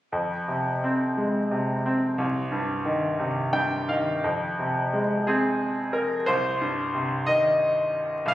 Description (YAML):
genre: classical, lyrical solo piano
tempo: 59 BPM (dotted quarters)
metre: 6/8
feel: rubato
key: F minor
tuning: A4 = 439 Hz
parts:
  - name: bright concert grand piano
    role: solo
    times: 0.1-8.3 s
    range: C2 to G5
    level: -23 LUFS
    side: equal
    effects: none
room: wet recital hall reverb, RT60 1.3 s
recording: recorded on a phone in the room, studio reverb, vinyl crackle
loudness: -23 LUFS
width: side -14 dB against mid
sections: 0.1-4.2 A section; 4.2-8.3 B section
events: grand piano fill 3.2-4.2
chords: 0.1 Fm; 2.2 Cm; 4.2 Fm; 6.3 Cm